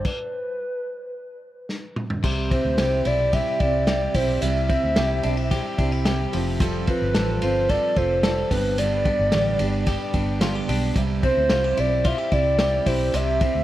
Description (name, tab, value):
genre	jangly indie pop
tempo	110 BPM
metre	4/4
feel	straight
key	C major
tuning	A4 = 441 Hz
part	warbly nostalgic lead	melody	0.0-13.6 s	B4 to E5	-24 LUFS	equal	chorus, analog delay
part	direct-recorded clean electric guitar	arpeggios	0.0-13.6 s	G2 to A4	-30 LUFS	left 6 dB	analog delay
part	vintage drum kit	drums	0.0-13.5 s	crash cymbal, hi-hat, kick drum, ride cymbal, snare drum, toms	-26 LUFS	equal	none
part	picked steel-string acoustic guitar	accompaniment	2.2-13.6 s	G2 to A4	-28 LUFS	right 6 dB	analog delay
part	vintage muted fingered electric bass	bass	2.2-13.6 s	F1 to D2	-26 LUFS	equal	none
room	light reverb, small room ambience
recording	echo-heavy mix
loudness	-20 LUFS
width	side -14 dB against mid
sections	0.0-2.2 A section; 2.2-13.6 B section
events	stop 0.1-2.2; drum fill 1.7-2.2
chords	0.0 G; 2.2 C; 6.3 Fadd9; 8.5 G; 11.0 C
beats	| 0.05 0.60 1.15 1.69 | 2.24 2.79 3.33 3.88 | 4.42 4.96 5.51 6.05 | 6.60 7.14 7.69 8.23 | 8.78 9.32 9.87 10.41 | 10.96 11.50 12.05 12.59 | 13.14